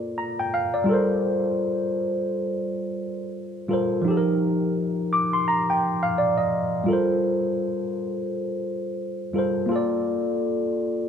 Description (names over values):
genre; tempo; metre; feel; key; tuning
R&B; 85 BPM; 4/4; swing 59% on 16ths; G minor; A4 = 440 Hz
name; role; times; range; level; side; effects
tine electric piano; solo; 0.0-11.1 s; F3 to D6; -22 LUFS; equal; lush chorus
room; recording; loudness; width
moderate plate reverb, RT60 3.4 s; none; -22 LUFS; side -8 dB against mid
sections
0.0-6.9 A section; 6.9-11.1 B section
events
tine electric piano fill 4.8-6.9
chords
0.0 Bbmaj7; 0.9 Gm11; 4.0 F9sus4; 6.9 Gm11; 9.7 Bbmaj7